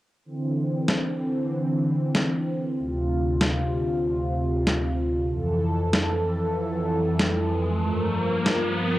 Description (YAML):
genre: glitch hop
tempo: 95 BPM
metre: 4/4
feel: swing 58% on 16ths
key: unclear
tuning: A4 = 440 Hz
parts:
  - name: warm analog pad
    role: sustained chords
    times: 0.3-9.0 s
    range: D2 to Bb4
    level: -23 LUFS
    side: equal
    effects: chorus, vintage 12-bit sampler grit, cassette tape
  - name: electronic snare drum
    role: drums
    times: 0.9-8.6 s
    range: none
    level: -24 LUFS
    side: equal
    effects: cassette tape
  - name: riser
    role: sound effects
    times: 6.4-9.0 s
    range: none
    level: -31 LUFS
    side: right 1 dB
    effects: none
room: light reverb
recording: home recording on cassette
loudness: -22 LUFS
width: side -16 dB against mid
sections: 0.3-9.0 A section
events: riser 6.4-9.0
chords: 0.3 Cadd9; 2.8 Dm7; 5.3 Fmaj7; 7.8 Gm7